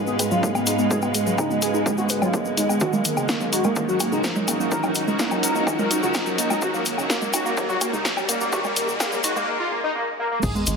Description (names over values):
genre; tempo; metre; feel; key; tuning
melodic techno; 126 BPM; 4/4; straight; unclear; A4 = 440 Hz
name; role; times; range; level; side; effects
wide unison lead; melody; 0.0-10.7 s; G#3 to A#4; -26 LUFS; equal; lush chorus, cassette tape, dub echo
evolving wavetable pad; sustained chords; 0.0-10.8 s; G#2 to E#5; -30 LUFS; right 1 dB; chorus, built-in reverb, sidechain pumping
riser and sub drop; sound effects; 0.6-10.8 s; none; -31 LUFS; equal; none
clear symphonic string section; texture; 0.0-9.5 s; G#3 to B4; -30 LUFS; right 1 dB; sidechain pumping
woody wave-folded pluck; arpeggios; 0.1-10.7 s; C#3 to B4; -29 LUFS; right 1 dB; chorus, sidechain pumping, dub echo
cabasa; percussion; 0.1-10.8 s; none; -29 LUFS; left 4 dB; none
punchy analog drum machine; drums; 0.2-10.8 s; congas, crash cymbal, hi-hat, snare drum, woodblock; -26 LUFS; equal; none
electronic kick drum; drums; 0.4-10.5 s; none; -28 LUFS; equal; high-pass filter on kick
tight sequencer bass; bass; 10.4-10.8 s; G#1; -27 LUFS; equal; sidechain pumping
room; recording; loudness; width
wet digital room reverb, RT60 1.1 s, digital ambience; dense, heavily limited modern master, high-pass filter; -20 LUFS; side -5 dB against mid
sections
0.0-10.4 A section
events
build-up 0.0-10.4; filter sweep on analog synth lead 0.0-10.4; filter sweep 0.0-10.4; riser 0.6-9.5; impact 10.4-10.8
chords
0.0 G#m; 2.8 D#m7/G#